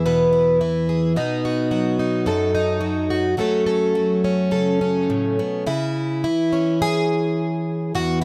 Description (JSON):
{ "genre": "folk, solo fingerstyle acoustic guitar", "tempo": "107 BPM", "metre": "4/4", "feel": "rubato", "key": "unclear", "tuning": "A4 = 438 Hz", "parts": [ { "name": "picked plugged-in twelve-string acoustic guitar", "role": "solo", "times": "0.0-8.2 s", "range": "E2 to B4", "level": "-20 LUFS", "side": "equal", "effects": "none" } ], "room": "light reverb", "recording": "close, detailed microphones", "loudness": "-21 LUFS", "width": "mono", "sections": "0.0-5.7 A section; 5.7-8.2 B section", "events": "none", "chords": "0.0 E; 1.1 B; 3.4 F#m; 5.7 C#m" }